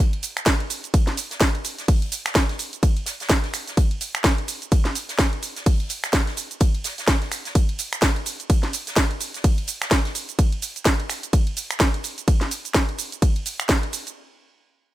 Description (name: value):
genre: house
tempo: 127 BPM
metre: 4/4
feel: swing 58% on 16ths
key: none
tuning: none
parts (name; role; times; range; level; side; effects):
- house drum kit; drums; 0.0-14.1 s; finger snaps, hi-hat, ride cymbal, shaker, snare drum; -24 LUFS; right 1 dB; none
- unplugged drum kit; drums; 0.2-10.3 s; hi-hat, snare drum; -35 LUFS; left 2 dB; high-pass filter on hats, high-pass filter on snare, high-pass filter on room
- electronic kick drum; drums; 0.5-13.8 s; none; -19 LUFS; equal; none
room: little or no reverb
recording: none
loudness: -20 LUFS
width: side -15 dB against mid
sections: 0.0-14.2 A section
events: drop 0.0-14.2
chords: none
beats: 0.47 | 0.94 1.41 1.88 2.36 | 2.83 3.30 3.77 4.25 | 4.72 5.19 5.66 6.13 | 6.61 7.08 7.55 8.03 | 8.50 8.97 9.44 9.91 | 10.39 10.86 11.33 11.80 | 12.28 12.75 13.22 13.69